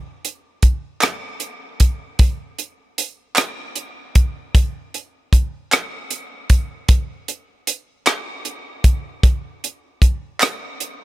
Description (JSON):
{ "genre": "gospel", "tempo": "51 BPM (dotted quarters)", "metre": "6/8", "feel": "straight", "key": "none", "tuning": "none", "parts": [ { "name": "tight funk drum kit", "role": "drums", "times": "0.2-11.0 s", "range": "hi-hat, kick drum, rim click", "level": "-16 LUFS", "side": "equal", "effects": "none" }, { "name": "group handclap", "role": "percussion", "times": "1.0-10.8 s", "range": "none", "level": "-23 LUFS", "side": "right 2 dB", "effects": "none" } ], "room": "little or no reverb", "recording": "none", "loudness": "-17 LUFS", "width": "side -17 dB against mid", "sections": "0.0-11.0 A section", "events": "none", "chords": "none" }